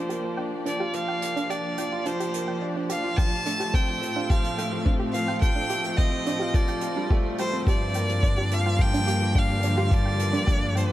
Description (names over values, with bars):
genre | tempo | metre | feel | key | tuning
piano and strings electronica | 107 BPM | 4/4 | straight | G minor | A4 = 437 Hz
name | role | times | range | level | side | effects
clear violin | melody | 0.0-10.9 s | C5 to A5 | -29 LUFS | equal | low-pass filter
muted studio string section | sustained chords | 0.0-10.9 s | A2 to D5 | -34 LUFS | left 1 dB | low-pass filter
soft round pluck | arpeggios | 0.0-10.8 s | D4 to G5 | -34 LUFS | right 2 dB | chorus, sidechain pumping, tape echo
clear concert grand piano | riff | 0.0-10.9 s | F3 to F4 | -30 LUFS | right 1 dB | none
hi-hat | drums | 0.1-10.9 s | none | -40 LUFS | right 3 dB | none
electronic kick drum | drums | 3.2-10.6 s | none | -22 LUFS | equal | none
warm studio cello section | bass | 7.7-10.9 s | G2 | -26 LUFS | left 1 dB | sidechain pumping
room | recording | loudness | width
light reverb, small room ambience | none | -22 LUFS | side -14 dB against mid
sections
0.0-7.7 A section; 7.7-10.9 B section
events
build-up 0.0-7.7; filter sweep on string section 0.0-7.7; drop 7.7-10.9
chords
0.0 Gm7; 3.2 Fadd9/A; 7.7 Gm7